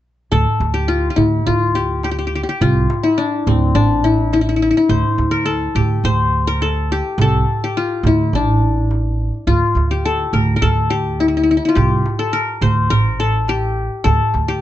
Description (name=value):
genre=Turkish makam ensemble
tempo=105 BPM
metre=4/4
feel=straight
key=D makam ussak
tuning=A4 = 438 Hz
part: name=qanun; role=melody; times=0.3-14.6 s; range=C4 to C5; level=-17 LUFS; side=left 4 dB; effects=none
part: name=upright bass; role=bass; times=0.3-14.6 s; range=A1 to D2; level=-19 LUFS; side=right 1 dB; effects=none
part: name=darbuka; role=percussion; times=0.3-14.5 s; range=none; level=-20 LUFS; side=right 3 dB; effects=none
room=little or no reverb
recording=nothing above 8.0 kHz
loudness=-14 LUFS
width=side -13 dB against mid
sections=0.3-14.6 A section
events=none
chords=none